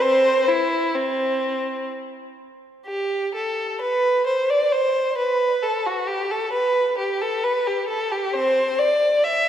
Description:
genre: classical, baroque-style suite movement for unaccompanied violin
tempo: 62-68 BPM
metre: 3/4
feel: rubato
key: unclear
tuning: A4 = 444 Hz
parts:
  - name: rich violin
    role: solo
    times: 0.0-9.5 s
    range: C4 to E5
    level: -19 LUFS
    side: equal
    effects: none
room: wet church reverb, RT60 2.9 s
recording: recorded in a church or concert hall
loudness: -19 LUFS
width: side -10 dB against mid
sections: 0.0-2.9 A section; 2.9-9.5 A section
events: none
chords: none

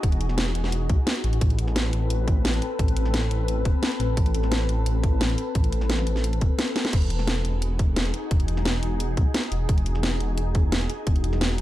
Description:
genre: liquid drum and bass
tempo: 174 BPM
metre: 4/4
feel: straight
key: E major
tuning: A4 = 443 Hz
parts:
  - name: glassy FM pad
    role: sustained chords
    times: 0.0-11.6 s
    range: C4 to B4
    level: -31 LUFS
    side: left 3 dB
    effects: ensemble chorus, built-in reverb, sidechain pumping
  - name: swelling detuned saw bass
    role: bass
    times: 0.0-11.6 s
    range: E1 to B1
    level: -25 LUFS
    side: equal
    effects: none
  - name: electronic kick drum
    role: drums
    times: 0.0-11.1 s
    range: none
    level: -22 LUFS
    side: equal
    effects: small room ambience
  - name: garage drum kit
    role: drums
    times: 0.0-11.6 s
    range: crash cymbal, hi-hat, snare drum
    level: -28 LUFS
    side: equal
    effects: small room ambience
room: little or no reverb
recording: dark, warm production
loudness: -21 LUFS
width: side -14 dB against mid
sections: 0.0-11.6 A section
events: drum fill 6.8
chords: 0.0 Emaj9; 1.2 Amadd9; 6.9 Emaj9

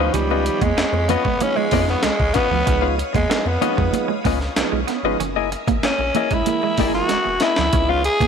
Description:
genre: funk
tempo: 95 BPM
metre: 4/4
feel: straight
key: Db mixolydian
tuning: A4 = 440 Hz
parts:
  - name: growling tenor saxophone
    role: melody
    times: 0.0-8.3 s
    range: F3 to Ab4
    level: -21 LUFS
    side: left 1 dB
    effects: none
  - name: semi-hollow electric guitar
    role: accompaniment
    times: 0.0-8.2 s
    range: Bb3 to F5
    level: -25 LUFS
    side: left 14 dB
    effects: none
  - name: string machine, violins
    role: sustained chords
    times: 0.0-8.3 s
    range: Bb4 to Eb6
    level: -31 LUFS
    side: equal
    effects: ensemble chorus
  - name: mellow tonewheel organ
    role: stabs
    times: 0.0-8.1 s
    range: Eb3 to Fb4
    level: -28 LUFS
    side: right 12 dB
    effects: slow rotary speaker
  - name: rubbery square bass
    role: bass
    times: 0.0-8.3 s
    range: Fb1 to F2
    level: -24 LUFS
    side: equal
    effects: none
  - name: electric guitar at the edge of break-up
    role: riff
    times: 0.1-8.3 s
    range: F3 to Db4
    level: -28 LUFS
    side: right 14 dB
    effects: none
  - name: breakbeat sampler-style drum kit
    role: drums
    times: 0.1-8.3 s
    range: hi-hat, kick drum, snare drum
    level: -23 LUFS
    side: equal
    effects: none
  - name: congas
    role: percussion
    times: 0.1-8.3 s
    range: none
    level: -28 LUFS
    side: right 15 dB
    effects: none
room: light reverb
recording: 1960s-style stereo with parts hard left and right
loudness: -17 LUFS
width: side -6 dB against mid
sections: 0.0-8.3 A section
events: tenor saxophone solo 0.0-8.3; drum fill 7.1-7.7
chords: 0.0 Db9; 5.2 Gb13; 7.7 Db9

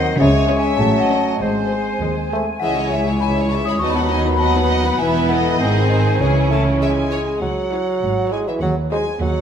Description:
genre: cinematic, playful, whimsical film cue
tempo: 100 BPM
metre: 2/4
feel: straight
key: C# minor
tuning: A4 = 440 Hz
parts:
  - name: celesta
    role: melody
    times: 0.0-6.8 s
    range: C#5 to D#6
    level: -25 LUFS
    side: left 5 dB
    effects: none
  - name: warm chamber violin section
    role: melody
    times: 0.0-9.1 s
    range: Gb4 to E5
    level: -28 LUFS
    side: left 2 dB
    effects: none
  - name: clear clarinet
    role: second line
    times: 0.0-7.1 s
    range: B4 to C#5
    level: -27 LUFS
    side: left 3 dB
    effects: none
  - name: dark chamber violin section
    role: second line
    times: 0.0-9.4 s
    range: G#4 to B5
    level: -27 LUFS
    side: left 1 dB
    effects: none
  - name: mellow flute section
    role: second line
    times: 0.0-7.1 s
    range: Gb5 to B5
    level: -26 LUFS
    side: equal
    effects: none
  - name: warm bassoon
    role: accompaniment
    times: 0.0-9.4 s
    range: Eb3 to A3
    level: -23 LUFS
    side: right 1 dB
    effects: none
  - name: warm symphonic viola section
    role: accompaniment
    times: 0.0-9.1 s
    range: E3 to G#4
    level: -26 LUFS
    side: right 2 dB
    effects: none
  - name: warm French horn section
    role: sustained chords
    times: 0.0-7.1 s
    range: D#3 to C#4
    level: -23 LUFS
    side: left 3 dB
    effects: none
  - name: dark chamber double bass section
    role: bass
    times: 0.0-9.4 s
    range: E1 to D#2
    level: -23 LUFS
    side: right 2 dB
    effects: none
  - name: warm chamber cello section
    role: bass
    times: 0.0-9.4 s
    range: C#2 to C#3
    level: -23 LUFS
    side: right 1 dB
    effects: none
room: wet recital hall reverb, RT60 1.7 s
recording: none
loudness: -15 LUFS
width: side -8 dB against mid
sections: 0.0-7.4 A section; 7.4-9.4 B section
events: none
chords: 0.2 C#m; 0.8 F#m/A; 1.4 G#; 2.6 C#m; 3.8 B/D#; 5.0 E; 5.6 G#7; 6.2 C#m; 8.6 Cdim/Eb

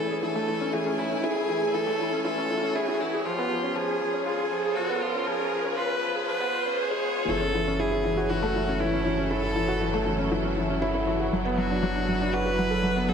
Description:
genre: piano and strings electronica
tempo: 119 BPM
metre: 4/4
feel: straight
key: F# minor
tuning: A4 = 439 Hz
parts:
  - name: bright viola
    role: melody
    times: 0.0-13.1 s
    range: E4 to B4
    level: -29 LUFS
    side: equal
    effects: none
  - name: clear symphonic string section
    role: sustained chords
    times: 0.0-13.1 s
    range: C#3 to G#5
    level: -33 LUFS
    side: equal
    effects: none
  - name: felt-muted upright piano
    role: riff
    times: 0.0-13.1 s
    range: E3 to B4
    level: -27 LUFS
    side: equal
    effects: digital delay
  - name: warm sub bass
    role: bass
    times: 0.0-13.1 s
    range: F#1 to C#2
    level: -33 LUFS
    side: equal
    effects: high-pass filter
  - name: riser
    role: sound effects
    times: 0.0-7.3 s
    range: none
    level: -34 LUFS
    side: right 1 dB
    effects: none
room: moderate echo chamber reverb, RT60 2.6 s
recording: high-pass filter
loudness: -24 LUFS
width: side -7 dB against mid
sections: 0.0-7.3 A section; 7.3-13.1 B section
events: build-up 0.0-7.3; riser 0.0-7.3; filter sweep 0.0-7.3; drop 7.3-13.1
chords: 0.0 Amaj7; 3.3 C#7; 7.3 F#m7; 11.3 D6/F#

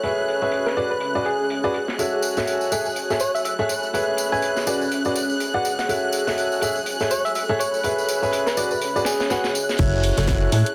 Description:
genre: piano house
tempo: 123 BPM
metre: 4/4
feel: swing 58% on 16ths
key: F# minor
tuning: A4 = 439 Hz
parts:
  - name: warm studio string section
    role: sustained chords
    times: 0.0-10.7 s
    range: F#6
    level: -32 LUFS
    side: equal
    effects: sidechain pumping
  - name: clear upright piano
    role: riff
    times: 0.0-10.6 s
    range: E4 to F#5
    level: -26 LUFS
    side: equal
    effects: sidechain pumping, digital delay
  - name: modern studio drum kit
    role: drums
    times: 0.0-10.7 s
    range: hi-hat, snare drum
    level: -34 LUFS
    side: equal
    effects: sidechain pumping on hats, high-pass filter on hats, low-pass filter on hats, soft clipping on snare, high-pass filter on snare, low-pass filter on snare, high-pass filter on room, low-pass filter on room
  - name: ethereal airy pad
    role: texture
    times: 0.0-9.8 s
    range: C#4 to B5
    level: -31 LUFS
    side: equal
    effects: ensemble chorus, built-in reverb, sidechain pumping
  - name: soft struck synth lead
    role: melody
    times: 0.7-9.5 s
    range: G#4 to G#5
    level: -29 LUFS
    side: equal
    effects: chorus, phaser, digital delay
  - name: tambourine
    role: percussion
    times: 2.0-9.8 s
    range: none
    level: -33 LUFS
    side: equal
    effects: none
  - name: solid FM bass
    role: bass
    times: 9.8-10.6 s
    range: F#1 to A2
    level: -22 LUFS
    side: equal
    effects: sidechain pumping
  - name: electronic kick drum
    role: drums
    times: 9.8-10.4 s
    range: none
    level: -26 LUFS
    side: equal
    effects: none
  - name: house drum kit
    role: drums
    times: 9.8-10.7 s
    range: crash cymbal, hi-hat, snare drum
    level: -32 LUFS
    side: equal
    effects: none
room: moderate plate reverb, RT60 1.4 s, small room ambience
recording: dense, heavily limited modern master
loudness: -22 LUFS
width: mono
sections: 0.0-9.8 A section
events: none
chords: 0.0 C#m7; 0.8 G#m7b5; 2.0 F#m7; 2.7 Amaj7; 3.9 C#m7; 4.7 G#m7b5; 5.9 F#m7; 6.6 Amaj7; 7.8 C#m7; 8.6 G#m7b5; 9.8 F#m7

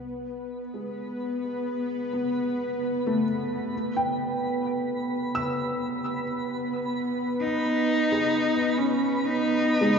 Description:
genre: ambient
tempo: 65 BPM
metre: 4/4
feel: straight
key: unclear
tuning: A4 = 439 Hz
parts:
  - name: felt-muted upright piano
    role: arpeggios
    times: 0.0-10.0 s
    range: G#3 to E6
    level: -31 LUFS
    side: left 1 dB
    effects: tape echo
  - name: bowed-like drone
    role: drone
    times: 0.0-10.0 s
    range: B3 to B4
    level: -28 LUFS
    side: equal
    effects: built-in reverb
  - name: twinkling granular texture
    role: texture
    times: 1.0-10.0 s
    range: B5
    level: -38 LUFS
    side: right 2 dB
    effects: built-in reverb
  - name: clear cello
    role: melody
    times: 7.4-10.0 s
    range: C#4 to D#4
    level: -24 LUFS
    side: equal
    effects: none
room: wet concert hall reverb, RT60 2.1 s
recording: dark, warm production, nothing above 7.6 kHz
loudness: -25 LUFS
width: side -6 dB against mid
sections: 0.0-10.0 A section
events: fade-in on synth texture 0.0-10.0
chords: 0.0 G#m; 3.7 G; 7.4 G#m

